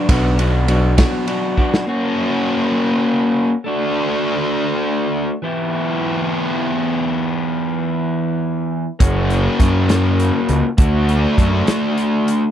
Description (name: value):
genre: indie rock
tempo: 67 BPM (dotted quarters)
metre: 6/8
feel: straight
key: unclear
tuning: A4 = 442 Hz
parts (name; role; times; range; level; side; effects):
- fuzz guitar; riff; 0.0-12.5 s; E3 to G4; -17 LUFS; left 1 dB; distortion
- fuzz picked electric bass; bass; 0.1-1.0, 9.0-11.6 s; F#1 to F#2; -16 LUFS; equal; overdrive
- loose indie drum kit; drums; 0.1-1.9, 9.0-12.4 s; hi-hat, kick drum, ride cymbal, snare drum; -16 LUFS; equal; none
room: little or no reverb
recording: dry, close 1970s-style studio recording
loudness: -15 LUFS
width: side -10 dB against mid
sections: 0.0-1.9 A section; 1.9-12.5 B section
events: drum fill 1.6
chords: 0.0 Bm; 1.9 F#; 3.6 D; 5.4 Em; 9.0 F#; 10.8 D